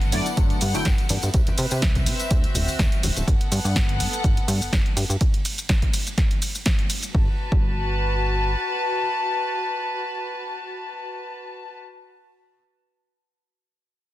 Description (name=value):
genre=filtered disco house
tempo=124 BPM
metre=4/4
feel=swing 54% on 16ths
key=G major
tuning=A4 = 440 Hz
part: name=warm chamber string section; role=sustained chords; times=0.0-11.8 s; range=B3 to A5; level=-27 LUFS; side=left 2 dB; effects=sidechain pumping
part: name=plucky analog bass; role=bass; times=0.0-8.6 s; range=D1 to C3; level=-25 LUFS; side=equal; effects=tube saturation, sidechain pumping
part: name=punchy analog drum machine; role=drums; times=0.0-7.1 s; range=hi-hat, ride cymbal, shaker, snare drum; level=-27 LUFS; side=right 1 dB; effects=sidechain pumping on hats, sidechain pumping on perc, sidechain pumping on cymbals
part: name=tambourine and congas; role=percussion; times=0.0-3.3 s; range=none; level=-35 LUFS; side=left 2 dB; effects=sidechain pumping on perc
part: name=muted trumpet section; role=melody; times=0.1-0.9 s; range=D5 to G5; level=-34 LUFS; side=left 1 dB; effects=sidechain pumping, dub echo
part: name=funky polysynth comp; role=accompaniment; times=0.1-0.9 s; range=D3 to E4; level=-29 LUFS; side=equal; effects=chorus, phaser, sidechain pumping
part: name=electronic kick drum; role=drums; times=0.4-7.7 s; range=none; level=-22 LUFS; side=equal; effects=none
room=light reverb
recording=dense, heavily limited modern master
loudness=-20 LUFS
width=side -15 dB against mid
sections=0.0-7.1 A section; 7.1-11.0 B section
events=drop 0.0-7.1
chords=0.0 Gmaj9; 1.3 Cmaj7; 2.3 D9; 3.3 Gmaj9; 5.2 N.C.; 7.1 Gmaj9